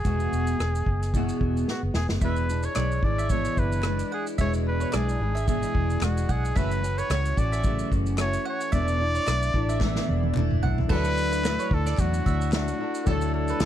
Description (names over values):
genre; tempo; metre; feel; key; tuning
acoustic pop; 111 BPM; 4/4; swing 55% on 16ths; unclear; A4 = 441 Hz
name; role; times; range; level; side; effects
warm trumpet; melody; 0.0-13.7 s; F#4 to D5; -30 LUFS; equal; tape echo
fingerpicked steel-string acoustic guitar; accompaniment; 0.0-13.7 s; E2 to F#4; -29 LUFS; equal; double-tracked left and right
vintage muted fingered electric bass; bass; 0.0-13.7 s; E1 to E2; -27 LUFS; equal; none
unplugged drum kit; drums; 0.1-13.7 s; crash cymbal, kick drum, rim click, shaker, snare drum, toms; -28 LUFS; equal; none
mandolin; arpeggios; 2.2-13.6 s; A4 to F#5; -36 LUFS; right 8 dB; none
group handclap; percussion; 2.8-13.7 s; none; -42 LUFS; left 4 dB; none
clear upright piano; accompaniment; 10.9-13.7 s; A3 to D5; -40 LUFS; left 9 dB; none
room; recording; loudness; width
little or no reverb; dark, warm production; -23 LUFS; side -11 dB against mid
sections
0.0-2.2 A section; 2.2-10.9 B section; 10.9-13.7 C section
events
drum fill 1.7-2.2, 9.8-10.9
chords
0.0 Eadd9; 2.2 E7; 6.6 F#m7; 8.7 E7sus4; 10.9 Dadd9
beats
| 0.05 0.59 1.13 1.68 | 2.22 2.76 3.31 3.85 | 4.39 4.94 5.48 6.02 | 6.56 7.11 7.65 8.19 | 8.73 9.28 9.82 10.36 | 10.90 11.45 11.99 12.53 | 13.07 13.62